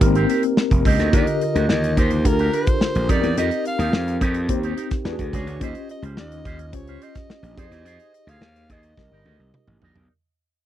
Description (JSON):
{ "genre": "polished 1980s jazz-funk pop", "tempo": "107 BPM", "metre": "4/4", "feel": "straight", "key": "unclear", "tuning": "A4 = 439 Hz", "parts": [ { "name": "tine electric piano", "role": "accompaniment", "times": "0.0-10.1 s", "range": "D3 to Eb5", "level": "-24 LUFS", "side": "left 2 dB", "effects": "overdrive, fast stereo tremolo, wide subtle chorus" }, { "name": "electric guitar with an envelope filter", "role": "riff", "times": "0.0-10.1 s", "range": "C4 to D5", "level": "-30 LUFS", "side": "right 5 dB", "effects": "wide subtle chorus" }, { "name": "gritty slap bass", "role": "bass", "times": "0.0-10.1 s", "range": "F1 to F2", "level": "-22 LUFS", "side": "equal", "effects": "overdrive" }, { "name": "modern studio drum kit", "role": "drums", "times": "0.0-10.1 s", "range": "hi-hat, kick drum, snare drum, toms", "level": "-22 LUFS", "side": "equal", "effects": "none" }, { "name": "breathy soprano saxophone", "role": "melody", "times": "0.9-9.8 s", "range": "Bb4 to F5", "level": "-28 LUFS", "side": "right 1 dB", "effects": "none" } ], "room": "little or no reverb", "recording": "dry, close 1970s-style studio recording", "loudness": "-18 LUFS", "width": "side -12 dB against mid", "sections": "0.0-10.1 A section", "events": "fade-out 0.0-10.1; drum fill 9.0-10.1", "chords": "0.0 Abmaj9; 1.1 Ebmaj7; 3.1 F9sus4; 5.1 E9; 5.6 Eb13; 7.6 Fm7; 9.0 Cm9" }